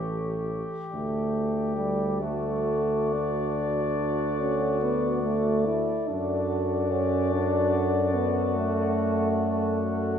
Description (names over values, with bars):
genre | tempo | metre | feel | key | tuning
classical, hymn-like piece for brass band | 48 BPM (dotted quarters) | 12/8 | rubato | D major | A4 = 440 Hz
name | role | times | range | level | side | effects
mellow flugelhorn | melody | 0.0-10.2 s | C#5 to D5 | -32 LUFS | left 9 dB | none
warm French horn section | second line | 0.0-10.2 s | A4 | -34 LUFS | right 2 dB | none
clear trombone section | accompaniment | 0.0-10.2 s | F#4 to G4 | -35 LUFS | left 1 dB | none
warm euphonium | accompaniment | 0.0-10.2 s | E3 to E4 | -28 LUFS | right 2 dB | none
warm tuba | bass | 0.0-10.2 s | A1 to F#2 | -29 LUFS | equal | none
room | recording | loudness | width
wet scoring stage reverb, RT60 2.0 s | heard from further back in the room, nothing above 10.5 kHz | -24 LUFS | side -8 dB against mid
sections
0.0-10.2 A section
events
none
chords
0.0 A7; 0.9 D; 6.1 D/F#